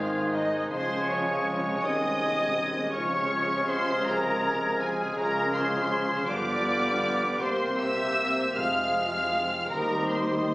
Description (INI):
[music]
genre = classical, slow romantic movement for symphony orchestra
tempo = 53 BPM (dotted quarters)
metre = 6/8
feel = rubato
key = unclear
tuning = A4 = 439 Hz
[part]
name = muted chamber violin section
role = melody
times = 0.0-10.5 s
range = Eb5 to F6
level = -31 LUFS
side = equal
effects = none
[part]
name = mellow clarinet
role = second line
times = 0.0-10.5 s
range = G4 to C5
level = -37 LUFS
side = equal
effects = none
[part]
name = mellow cor anglais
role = second line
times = 0.0-10.5 s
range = C5 to Ab5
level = -36 LUFS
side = equal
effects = none
[part]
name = muted symphonic violin section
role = second line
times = 0.0-10.5 s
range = Eb4 to F5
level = -33 LUFS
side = equal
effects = none
[part]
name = small flute group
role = second line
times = 0.0-10.5 s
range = Eb6 to Ab6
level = -36 LUFS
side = left 1 dB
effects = none
[part]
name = muted chamber viola section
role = accompaniment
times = 0.0-10.5 s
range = F3 to Ab4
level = -37 LUFS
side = equal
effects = none
[part]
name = warm bassoon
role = accompaniment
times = 0.0-10.5 s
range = C3 to F3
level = -36 LUFS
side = equal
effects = none
[part]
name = bright trombone section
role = sustained chords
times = 0.0-10.5 s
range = C3 to B3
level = -37 LUFS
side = right 1 dB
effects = none
[part]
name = dark French horn section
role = sustained chords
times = 0.0-10.5 s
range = C4 to Ab4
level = -35 LUFS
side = left 1 dB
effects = none
[part]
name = mellow trumpet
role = stabs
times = 0.0-10.5 s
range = Eb4 to F5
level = -33 LUFS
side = equal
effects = none
[part]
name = muted chamber cello section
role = bass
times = 0.0-10.5 s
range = Eb2 to Db3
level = -36 LUFS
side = equal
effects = none
[part]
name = muted chamber double bass section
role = bass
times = 0.0-10.5 s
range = F1 to Eb2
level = -41 LUFS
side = equal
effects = none
[sound]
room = moderate recital hall reverb, RT60 1.6 s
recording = recorded on a phone in the room, studio reverb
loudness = -24 LUFS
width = side -20 dB against mid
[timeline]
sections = 0.0-10.5 A section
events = none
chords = 0.0 Ab; 0.7 Db; 1.8 Ab/C; 2.9 Dbmaj7; 6.3 G7; 7.4 C7; 8.6 Fm; 9.7 Cm/Eb